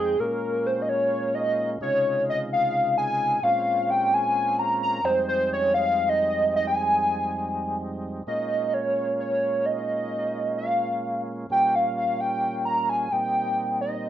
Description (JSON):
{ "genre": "progressive instrumental, progressive", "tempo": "free time", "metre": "none", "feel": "none", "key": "Bb dorian", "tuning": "A4 = 440 Hz", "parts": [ { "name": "hollow square lead", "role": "melody", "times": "0.0-14.1 s", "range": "Ab4 to Bb5", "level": "-22 LUFS", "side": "equal", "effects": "chorus" }, { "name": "tonewheel organ", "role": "accompaniment", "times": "0.0-14.1 s", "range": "F2 to G5", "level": "-31 LUFS", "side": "right 2 dB", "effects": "chorus vibrato" } ], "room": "wet studio reverb, RT60 0.5 s", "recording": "rough home demo mix", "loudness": "-22 LUFS", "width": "side -11 dB against mid", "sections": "0.0-8.3 A section; 8.3-14.1 B section", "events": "none", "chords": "0.2 Bbm7; 1.8 Dbmaj7; 3.4 Bbm7; 5.0 Fm7; 8.3 Bbm7; 11.5 Bbm6; 13.1 Eb6/Bb" }